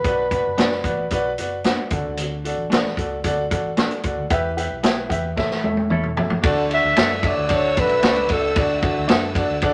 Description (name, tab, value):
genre	uptempo 1960s-style soul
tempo	113 BPM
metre	4/4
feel	straight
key	D major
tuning	A4 = 440 Hz
part	warm alto saxophone	melody	0.0-1.4, 6.7-9.1 s	F#4 to E5	-23 LUFS	equal	none
part	clear upright piano	accompaniment	0.0-9.7 s	A2 to E5	-26 LUFS	equal	none
part	vintage muted fingered electric bass	bass	0.0-9.7 s	E1 to A2	-33 LUFS	equal	none
part	vintage drum kit	drums	0.0-9.7 s	hi-hat, kick drum, ride cymbal, snare drum, toms	-24 LUFS	equal	none
part	semi-hollow electric guitar	stabs	0.6-9.2 s	A3 to A4	-31 LUFS	equal	none
part	warm saxophone section	second line	6.4-8.4 s	A3 to B4	-34 LUFS	equal	none
part	warm studio string section	second line	6.4-9.7 s	D5 to E6	-34 LUFS	equal	none
room	wet studio reverb, RT60 0.6 s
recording	none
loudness	-21 LUFS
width	mono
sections	0.0-6.4 A section; 6.4-9.7 B section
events	drum fill 5.4-6.4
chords	0.0 Bm; 1.9 D; 4.3 Em; 5.4 A; 6.4 D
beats	| 0.04 0.57 1.11 1.64 | 2.17 2.71 3.24 3.77 | 4.31 4.84 5.37 5.90 | 6.44 6.97 7.50 8.03 | 8.56 9.09 9.62